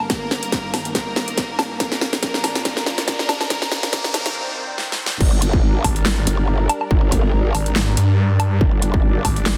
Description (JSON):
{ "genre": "heavy wobble dubstep", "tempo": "141 BPM", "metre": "4/4", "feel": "swing 54% on 16ths, half-time", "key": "G phrygian", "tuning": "A4 = 440 Hz", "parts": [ { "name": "clear studio violin section", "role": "melody", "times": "0.0-4.3 s", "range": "Bb3 to Bb4", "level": "-30 LUFS", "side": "equal", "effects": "tape echo" }, { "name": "lush unison pad", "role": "sustained chords", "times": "0.0-9.6 s", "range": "G2 to D5", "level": "-32 LUFS", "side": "equal", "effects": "chorus, phaser, sidechain pumping" }, { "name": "dubstep drum kit", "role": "drums", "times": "0.0-9.6 s", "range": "crash cymbal, handclaps, hi-hat, snare drum, woodblock", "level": "-24 LUFS", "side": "equal", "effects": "small room ambience" }, { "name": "riser", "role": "sound effects", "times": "1.1-4.4 s", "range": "none", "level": "-34 LUFS", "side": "equal", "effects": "none" }, { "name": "electronic kick drum", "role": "drums", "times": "0.1-9.3 s", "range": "none", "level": "-22 LUFS", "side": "equal", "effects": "distortion, small room ambience" }, { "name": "growl bass", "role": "bass", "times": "5.2-9.2 s", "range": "G1 to Ab1", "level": "-22 LUFS", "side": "equal", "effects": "chorus, overdrive" }, { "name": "snarling distorted saw bass", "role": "bass", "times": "5.8-9.6 s", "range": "Ab1 to G2", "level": "-20 LUFS", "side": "equal", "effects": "distortion, overdrive" } ], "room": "light reverb, digital ambience", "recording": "dense, heavily limited modern master, high-pass filter", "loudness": "-19 LUFS", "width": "mono", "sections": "0.0-5.2 A section; 5.2-9.6 B section", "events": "build-up 0.0-5.2; drum fill 0.0-4.4, 4.8-5.2; filter sweep on analog synth pad 0.0-5.2; filter sweep 0.0-5.2; break 4.4-5.2; drop 5.2-9.6", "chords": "0.1 Eb/G; 1.8 Bb; 3.5 Cmadd9; 5.2 Gm", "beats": "| 0.10 0.52 0.95 1.38 | 1.80 2.23 2.65 3.08 | 3.50 3.93 4.35 4.78 | 5.21 5.63 6.06 6.48 | 6.91 7.33 7.76 8.18 | 8.61 9.04 9.46" }